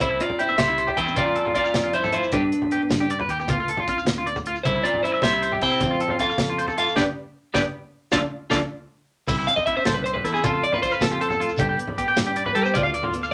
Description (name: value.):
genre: highlife guitar band.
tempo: 104 BPM (dotted quarters).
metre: 12/8.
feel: straight.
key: C major.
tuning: A4 = 439 Hz.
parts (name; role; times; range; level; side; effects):
clean electric guitar; melody; 0.0-13.3 s; D4 to G5; -25 LUFS; equal; none.
nylon-string guitar; accompaniment; 0.0-13.3 s; F3 to E4; -36 LUFS; equal; none.
electric guitar at the edge of break-up; arpeggios; 0.0-13.3 s; B3 to G5; -28 LUFS; equal; none.
fingered electric bass; bass; 0.0-13.3 s; G1 to G3; -34 LUFS; equal; none.
tight funk drum kit; drums; 0.0-13.2 s; crash cymbal, hi-hat, kick drum, snare drum; -31 LUFS; equal; none.
congas; percussion; 0.0-13.2 s; none; -34 LUFS; equal; none.
shekere; percussion; 0.0-13.3 s; none; -36 LUFS; equal; none.
combo organ; sustained chords; 9.3-13.3 s; C4 to B4; -38 LUFS; equal; none.
room: moderate small room reverb, RT60 0.6 s.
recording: none.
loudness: -23 LUFS.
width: mono.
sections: 0.0-9.3 A section; 9.3-13.3 B section.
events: band accent 7.0-9.3; drum fill 8.5-9.3; clean electric guitar solo 9.3-13.3.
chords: 0.0 C; 1.2 F; 2.3 G; 3.5 Dm; 4.6 C; 5.8 F; 7.0 G; 8.1 Dm; 9.3 C; 10.4 F; 11.6 G; 12.8 Dm.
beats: | 0.01 0.59 1.17 1.75 | 2.33 2.91 3.49 4.07 | 4.65 5.23 5.81 6.39 | 6.97 7.54 8.12 8.70 | 9.28 9.86 10.44 11.02 | 11.60 12.17 12.75 13.33.